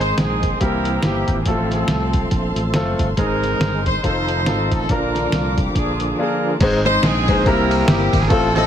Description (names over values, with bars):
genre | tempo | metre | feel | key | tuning
uptempo gospel | 140 BPM | 4/4 | swing 59% on 8ths | unclear | A4 = 440 Hz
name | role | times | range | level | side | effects
warm horn section | melody | 0.0-8.7 s | Bb3 to C5 | -22 LUFS | equal | tape echo
clear baby grand piano | accompaniment | 0.0-8.7 s | Ab2 to Eb5 | -21 LUFS | left 2 dB | none
percussive tonewheel organ | sustained chords | 0.0-8.7 s | D3 to Bb4 | -27 LUFS | right 2 dB | slow rotary speaker, overdrive, chorus vibrato
warm studio string section | sustained chords | 0.0-6.6 s | C5 to D6 | -32 LUFS | left 1 dB | none
modern bright fingered electric bass | bass | 0.0-8.7 s | F1 to C2 | -23 LUFS | equal | none
lo-fi sampler-style drum kit | drums | 0.0-8.6 s | crash cymbal, hi-hat, kick drum, ride cymbal, snare drum | -21 LUFS | equal | none
room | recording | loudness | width
little or no reverb | heavily compressed radio sound | -16 LUFS | side -9 dB against mid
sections
0.0-6.6 A section; 6.6-8.7 B section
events
none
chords
0.0 Ab; 0.6 C7; 1.5 F/A; 3.2 Ab; 4.0 F7; 4.9 Bb; 6.6 Ab; 7.5 C7